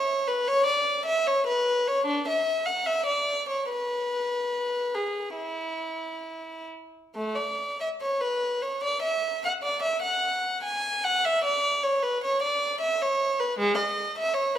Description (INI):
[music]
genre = classical, baroque-style suite movement for unaccompanied violin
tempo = 64-78 BPM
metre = 4/4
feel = rubato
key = unclear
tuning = A4 = 436 Hz
[part]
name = warm violin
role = solo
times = 0.0-14.6 s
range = G#3 to G#5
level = -24 LUFS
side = equal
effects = none
[sound]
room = moderate recital hall reverb, RT60 1.2 s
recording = minimal, uncompressed stereo recording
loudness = -24 LUFS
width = side -10 dB against mid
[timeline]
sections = 0.0-14.6 A section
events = none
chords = none